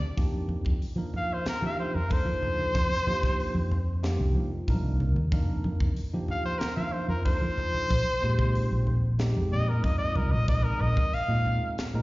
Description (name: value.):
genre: electric jazz fusion.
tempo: 93 BPM.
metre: 4/4.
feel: straight.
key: unclear.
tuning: A4 = 438 Hz.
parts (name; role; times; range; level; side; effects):
bright tine electric piano; accompaniment; 0.2-12.0 s; Ab3 to Bb4; -36 LUFS; right 1 dB; phaser, plate reverb, slapback echo.
fingered electric bass; bass; 0.2-12.0 s; Bb1 to F3; -28 LUFS; equal; none.
crisp fusion drum kit; drums; 0.2-11.9 s; hi-hat, kick drum, snare drum; -30 LUFS; equal; none.
congas; percussion; 0.5-11.6 s; none; -33 LUFS; equal; none.
clear trumpet; melody; 1.2-11.8 s; Bb4 to F5; -30 LUFS; left 1 dB; slapback echo, plate reverb.
room: little or no reverb.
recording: live gig heard through the venue's PA, recital hall reverb, nothing above 7.4 kHz.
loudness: -25 LUFS.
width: side -20 dB against mid.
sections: 0.2-12.0 A section.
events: tine electric piano fill 0.0; drum fill 0.0; band accent 0.0; trumpet solo 0.0-12.0.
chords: 0.2 F13sus4; 7.9 Bb13sus4.